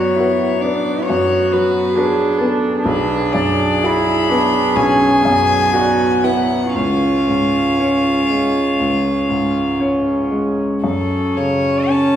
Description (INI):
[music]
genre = classical, slow romantic movement for piano quartet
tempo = 54-69 BPM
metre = 4/4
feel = rubato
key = unclear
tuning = A4 = 440 Hz
[part]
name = rich violin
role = melody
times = 0.0-12.2 s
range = A4 to B5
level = -20 LUFS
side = left 4 dB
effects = none
[part]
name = warm cello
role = second line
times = 0.0-10.3 s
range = D4 to A4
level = -21 LUFS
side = right 4 dB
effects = none
[part]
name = bright baby grand piano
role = accompaniment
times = 0.0-12.2 s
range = B1 to D5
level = -20 LUFS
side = left 1 dB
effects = none
[part]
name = rich viola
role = accompaniment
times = 0.0-12.2 s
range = B3 to E4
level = -19 LUFS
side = right 2 dB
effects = none
[sound]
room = wet recital hall reverb, RT60 1.7 s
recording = heard from further back in the room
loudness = -14 LUFS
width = side -10 dB against mid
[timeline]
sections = 0.0-12.2 A section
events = none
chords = 0.0 Bm/F#; 2.8 Bm; 6.7 C#; 10.8 F#m